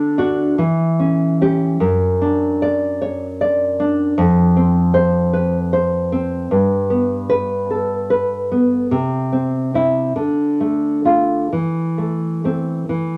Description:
romantic piece for solo classical guitar; 42-54 BPM (dotted quarters); 6/8; rubato; A minor from 4.2 s; A4 = 440 Hz
nylon-string guitar; solo; 0.0-13.2 s; F2 to D5; -18 LUFS; equal
moderate club reverb, RT60 0.6 s; -18 LUFS; mono
0.0-13.2 A section
0.0 D; 0.6 C#dim/E; 1.8 D/F#; 4.2 F5; 6.5 G; 8.9 C; 10.2 Dm; 11.5 Am/E

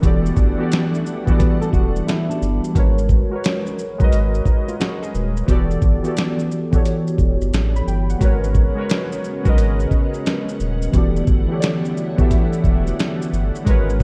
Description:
lo-fi hip hop; 88 BPM; 4/4; swing 66% on 16ths; A4 = 440 Hz
warbly lo-fi synth keys; accompaniment; 0.0-14.0 s; E3 to B5; -24 LUFS; equal; chorus, cassette tape, low-pass filter
string machine, violins; sustained chords; 0.0-2.7, 8.2-14.0 s; C#3 to F#5; -32 LUFS; equal; ensemble chorus, low-pass filter
saturated sub bass; bass; 0.0-14.0 s; D#1 to B1; -23 LUFS; equal
dusty soul sampler-style drum kit; drums; 0.0-14.0 s; hi-hat, kick drum, shaker, snare drum; -21 LUFS; equal
flamenco guitar; second line; 1.4-5.5 s; D4 to B4; -32 LUFS; equal; low-pass filter, analog delay
light reverb; dark, warm production; -19 LUFS; mono
0.0-14.0 A section
0.0 Em11; 2.8 G#m11; 5.5 Em11; 8.2 G#m11; 10.9 Em11

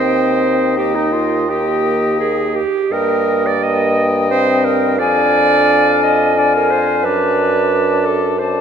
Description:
classical, slow romantic movement for wind quintet; 86 BPM; 3/4; uneven beats, rubato; A4 = 440 Hz
silver concert flute; melody; 0.0-8.6 s; G5 to A5; -20 LUFS; left 6 dB
warm oboe; second line; 0.0-8.6 s; D5 to F5; -22 LUFS; left 4 dB
clear clarinet; accompaniment; 0.0-8.6 s; Eb4 to Eb5; -16 LUFS; right 5 dB
mellow French horn; accompaniment; 0.0-8.6 s; Bb3 to D4; -22 LUFS; left 1 dB
mellow bassoon; bass; 0.0-8.6 s; Eb2 to G2; -19 LUFS; equal
wet concert hall reverb, RT60 2.5 s; -12 LUFS; side -7 dB against mid
0.0-8.6 A section
0.0 Cm/Eb; 0.8 Eb; 2.9 Eb/G; 5.0 Ddim/F; 7.0 D/F#

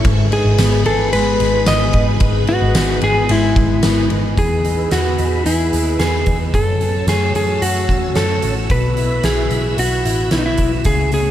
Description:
dream pop; 111 BPM; 4/4; straight; E major; A4 = 439 Hz
phased string machine; sustained chords; 0.0-11.3 s; A3 to E6; -26 LUFS; equal; ensemble chorus, phaser
mellow electric guitar; arpeggios; 0.0-11.3 s; F#2 to A4; -21 LUFS; left 2 dB; ensemble chorus, tape echo
vintage muted picked electric bass; bass; 0.0-11.3 s; G#1 to F#2; -20 LUFS; equal
oversized low-tuned drum kit; drums; 0.0-11.2 s; hi-hat, kick drum, ride cymbal, snare drum, tambourine; -20 LUFS; equal
electric slide guitar; melody; 0.3-11.3 s; D#4 to D#5; -19 LUFS; equal; tape echo
light reverb, small room reverb; -14 LUFS; side -11 dB against mid
0.0-4.4 A section; 4.4-11.3 B section
0.1 Emaj7/G# (rootless); 4.4 Emaj7; 6.5 F#m7; 8.7 Bsus4

